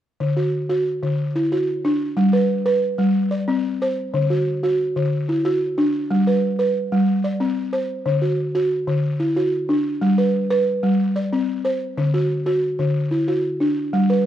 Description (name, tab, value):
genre	west african traditional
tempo	122 BPM (dotted quarters)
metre	12/8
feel	straight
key	D mixolydian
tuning	A4 = 440 Hz
part	balafon	arpeggios	0.2-14.3 s	D3 to D5	-18 LUFS	equal	none
room	light reverb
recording	rough home demo mix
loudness	-18 LUFS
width	side -11 dB against mid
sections	0.2-14.3 A section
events	none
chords	0.2 D; 2.2 G; 3.2 Csus2; 4.1 D; 6.1 G; 7.1 Csus2; 8.1 D; 10.0 G; 11.0 Csus2; 12.0 D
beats	| 0.20 0.69 1.18 1.68 | 2.17 2.66 3.15 3.64 | 4.13 4.63 5.12 5.61 | 6.10 6.59 7.08 7.57 | 8.06 8.55 9.04 9.53 | 10.02 10.50 10.99 11.48 | 11.97 12.46 12.95 13.44 | 13.93